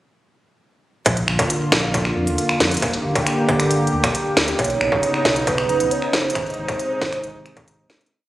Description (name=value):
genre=IDM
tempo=136 BPM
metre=4/4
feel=straight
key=Bb mixolydian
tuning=A4 = 443 Hz
part: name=warm analog pad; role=sustained chords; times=1.1-8.1 s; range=C3 to G4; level=-22 LUFS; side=equal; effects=chorus, vintage 12-bit sampler grit
part: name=warm sub bass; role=bass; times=1.1-8.0 s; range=Eb1 to F2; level=-27 LUFS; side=equal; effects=tube saturation
part: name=electronic kick drum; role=drums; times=1.1-7.7 s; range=none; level=-21 LUFS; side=equal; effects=distortion
part: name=industrial drum kit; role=drums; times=1.1-8.2 s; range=finger snaps, hi-hat, snare drum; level=-22 LUFS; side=equal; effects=none
part: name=warbly nostalgic lead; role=melody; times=4.6-7.9 s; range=B4 to C#5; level=-22 LUFS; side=right 4 dB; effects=wide subtle chorus
room=moderate lush hall reverb, RT60 1.9 s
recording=recorded on a phone in the room, studio reverb, compression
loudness=-17 LUFS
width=side -15 dB against mid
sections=1.1-8.1 groove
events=fade-out 5.8-8.1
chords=1.1 Bb; 2.8 Gm; 4.6 Badd9; 6.4 Ab